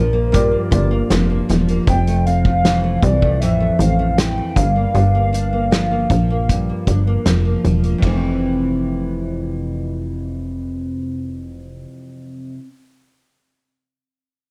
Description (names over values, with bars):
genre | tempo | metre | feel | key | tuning
indie pop, bedroom pop | 78 BPM | 4/4 | straight | F major | A4 = 440 Hz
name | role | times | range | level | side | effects
warbly nostalgic lead | melody | 0.0-7.3 s | Bb4 to G5 | -24 LUFS | equal | tremolo, lush chorus, tape echo
nylon-string guitar | accompaniment | 0.0-12.7 s | F2 to D4 | -23 LUFS | equal | lush chorus, warbly pitch drift
warm upright piano | accompaniment | 0.0-1.9 s | Bb3 to D5 | -27 LUFS | equal | none
plucky analog bass | bass | 0.0-11.9 s | E1 to C2 | -22 LUFS | equal | none
loose indie drum kit | drums | 0.3-8.2 s | hi-hat, kick drum, ride cymbal, snare drum | -22 LUFS | equal | none
room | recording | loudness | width
small room ambience | none | -18 LUFS | mono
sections
0.0-8.0 A section; 8.0-11.1 B section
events
none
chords
0.0 Gm7; 1.9 Fmaj7; 4.6 Gm7; 8.0 Fmaj7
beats
0.33 1.10 | 1.87 2.64 3.41 4.17 | 4.95 5.71 6.48 7.25 | 8.02 8.79 9.56 10.33